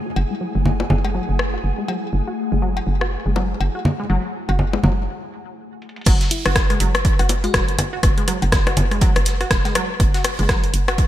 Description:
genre	minimal techno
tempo	122 BPM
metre	4/4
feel	swing 59% on 16ths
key	F# minor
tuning	A4 = 440 Hz
part	ethereal airy pad	texture	0.0-5.1 s	A3 to F#5	-30 LUFS	left 3 dB	ensemble chorus, built-in reverb, sidechain pumping
part	flickering grainy texture	texture	0.0-5.1 s	G#4	-34 LUFS	right 3 dB	built-in reverb, sidechain pumping
part	resonant blip pluck	riff	0.1-10.9 s	F#3 to F#4	-27 LUFS	equal	chorus, sidechain pumping, ping-pong delay
part	hollow knocking FM bass	bass	0.2-11.0 s	E1 to F#1	-21 LUFS	equal	sidechain pumping
part	electronic cowbell, congas, bongos and rim click	percussion	0.2-11.0 s	none	-23 LUFS	left 2 dB	gated reverb, digital delay
part	punchy analog drum machine	drums	5.8-11.1 s	crash cymbal, hi-hat, rim click	-24 LUFS	equal	low-pass filter on hats, low-pass filter on snare, low-pass filter on cymbals, low-pass filter on room, gated reverb
part	electronic kick drum	drums	6.1-11.1 s	none	-18 LUFS	equal	none
part	modern studio drum kit	drums	6.1-11.1 s	hi-hat, snare drum	-32 LUFS	right 4 dB	high-pass filter on hats, high-pass filter on snare, high-pass filter on room, gated reverb
part	bell-like FM electric piano	melody	6.3-8.1 s	E4 to F#4	-32 LUFS	left 3 dB	chorus, digital delay
room	light reverb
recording	bright 1980s-style digital production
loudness	-17 LUFS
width	side -13 dB against mid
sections	0.0-6.1 A section; 6.1-11.1 B section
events	filter sweep on synth pluck 0.0-6.1; break 5.1-6.1; drum fill 5.8; drop 6.1-11.1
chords	0.0 F#m7; 6.1 N.C.

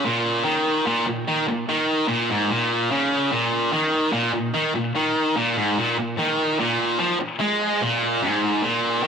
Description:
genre	rock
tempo	147 BPM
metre	4/4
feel	straight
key	unclear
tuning	A4 = 440 Hz
part	tight distorted guitar	solo	0.0-9.1 s	Ab2 to Ab3	-20 LUFS	equal	distortion, tape echo
room	wet large studio reverb, RT60 0.8 s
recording	none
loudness	-20 LUFS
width	side -6 dB against mid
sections	0.0-5.8 A section; 5.8-9.1 B section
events	none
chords	none

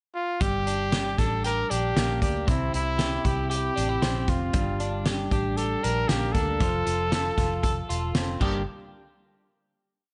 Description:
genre	jangly indie pop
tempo	116 BPM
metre	4/4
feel	straight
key	G dorian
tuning	A4 = 440 Hz
part	clear trumpet	melody	0.1-8.6 s	E4 to Bb4	-31 LUFS	equal	slapback echo
part	twelve-string electric guitar	arpeggios	0.4-8.6 s	G2 to A4	-33 LUFS	equal	slapback echo
part	vintage muted fingered electric bass	bass	0.4-8.6 s	E1 to D2	-32 LUFS	equal	none
part	loose indie drum kit	drums	0.4-8.5 s	crash cymbal, hi-hat, kick drum, snare drum	-30 LUFS	equal	none
room	light reverb, studio reverb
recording	nothing above 10.5 kHz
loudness	-26 LUFS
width	mono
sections	0.0-0.4 pickup bar; 0.4-8.7 verse; 8.7-10.1 final hit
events	none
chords	0.4 Gm; 2.5 C; 4.5 Gm; 6.6 F; 8.4 Gm; 8.7 N.C.

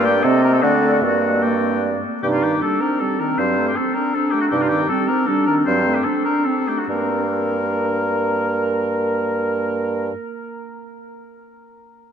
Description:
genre	quick classical-period movement for wind quintet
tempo	140-161 BPM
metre	3/4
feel	rubato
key	G minor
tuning	A4 = 437 Hz
part	silver concert flute	melody	0.0-2.0 s	D5 to Eb5	-26 LUFS	left 3 dB	none
part	warm oboe	second line	0.0-10.1 s	F4 to C5	-22 LUFS	left 3 dB	none
part	mellow French horn	accompaniment	0.0-10.1 s	C3 to D4	-26 LUFS	left 1 dB	none
part	mellow clarinet	accompaniment	0.0-10.1 s	Bb3 to Bb4	-22 LUFS	right 2 dB	none
part	clear bassoon	bass	0.0-10.1 s	G2 to D3	-21 LUFS	right 3 dB	none
room	wet cathedral reverb, RT60 5.6 s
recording	in a vast, echoing space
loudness	-17 LUFS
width	side -8 dB against mid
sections	0.0-2.2 A section; 2.2-6.9 B section; 6.9-9.3 C section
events	slowing down 4.0-6.9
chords	0.2 Adim/C; 0.6 D7; 1.0 Gm; 2.2 Cm/G; 3.4 D7/G; 4.5 Cm/G; 5.7 D7/G; 6.9 Gm

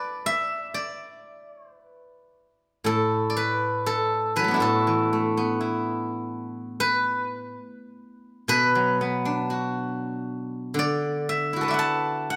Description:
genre	chinese traditional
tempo	57-64 BPM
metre	2/4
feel	rubato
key	D gong mode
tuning	A4 = 440 Hz
part	steel-string zither	solo	0.0-12.4 s	A2 to A5	-26 LUFS	equal	none
room	moderate scoring stage reverb, RT60 1.5 s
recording	none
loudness	-25 LUFS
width	mono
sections	0.0-2.9 A section; 2.9-12.4 B section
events	none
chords	none

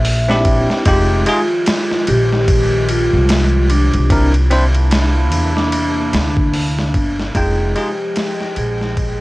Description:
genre	trip hop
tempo	74 BPM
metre	4/4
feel	swing 59% on 16ths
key	F dorian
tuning	A4 = 439 Hz
part	vibraphone with soft mallets	melody	0.0-9.2 s	D4 to E5	-20 LUFS	equal	dub echo
part	upright bass	bass	0.0-9.2 s	F1 to E2	-16 LUFS	equal	none
part	dusty soul sampler-style drum kit	drums	0.0-9.2 s	hi-hat, kick drum, ride cymbal, snare drum	-19 LUFS	equal	overdrive
part	bell-like tine electric piano	accompaniment	0.3-7.9 s	Ab3 to G5	-19 LUFS	equal	harmonic tremolo
part	warbly tape-like pad	sustained chords	0.9-9.2 s	C3 to G5	-24 LUFS	equal	chorus, built-in reverb, vintage 12-bit sampler grit
room	light reverb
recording	worn, warbling old tape, cassette tape, warbly pitch drift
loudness	-13 LUFS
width	side -20 dB against mid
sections	0.0-9.2 A section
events	fade-out 5.2-9.2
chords	0.0 C9; 0.9 Fm9; 4.1 C9; 7.3 Fm9

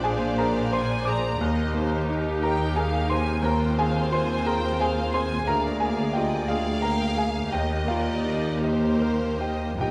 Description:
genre	classical, romantic movement for piano and orchestra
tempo	59 BPM (dotted quarters)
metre	12/8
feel	rubato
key	Eb major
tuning	A4 = 440 Hz
part	clear concert grand piano	melody	0.0-9.9 s	Bb1 to D6	-29 LUFS	equal	none
part	warm symphonic violin section	melody	0.0-9.9 s	Bb4 to F5	-38 LUFS	equal	none
part	rich studio violin section	second line	0.0-9.9 s	Bb4 to Bb5	-36 LUFS	equal	none
part	warm studio viola section	accompaniment	0.0-9.9 s	Bb3 to C5	-34 LUFS	equal	none
part	dark studio double bass section	bass	0.0-9.9 s	Bb1 to Eb2	-33 LUFS	equal	none
part	warm studio cello section	bass	0.0-9.9 s	D2 to Bb2	-32 LUFS	equal	none
room	wet recital hall reverb, RT60 1.5 s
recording	none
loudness	-25 LUFS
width	mono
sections	0.0-9.9 A section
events	none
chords	0.0 Bb9; 1.4 Eb; 3.4 Fm7/Eb; 5.5 Bb7/D; 7.5 Eb

